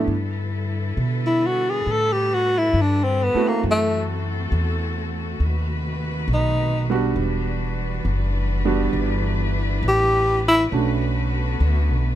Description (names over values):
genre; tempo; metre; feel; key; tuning
jazz ballad; 68 BPM; 4/4; swing 68% on 8ths; E minor; A4 = 440 Hz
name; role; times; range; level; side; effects
breathy tenor saxophone; melody; 0.0-10.6 s; A3 to A4; -19 LUFS; left 1 dB; none
clear concert grand piano; accompaniment; 0.0-12.2 s; G3 to F#4; -26 LUFS; right 5 dB; none
warm studio cello section; sustained chords; 0.0-12.2 s; C3 to B4; -30 LUFS; left 2 dB; none
upright bass; bass; 0.0-12.2 s; E1 to B2; -23 LUFS; equal; none
room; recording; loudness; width
light reverb; close, detailed microphones; -19 LUFS; side -12 dB against mid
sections
0.0-12.2 A section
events
tenor saxophone solo 0.0-12.2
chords
0.1 G69; 3.6 F#m7b5; 5.4 B7b9; 7.2 Em9; 10.7 Bm7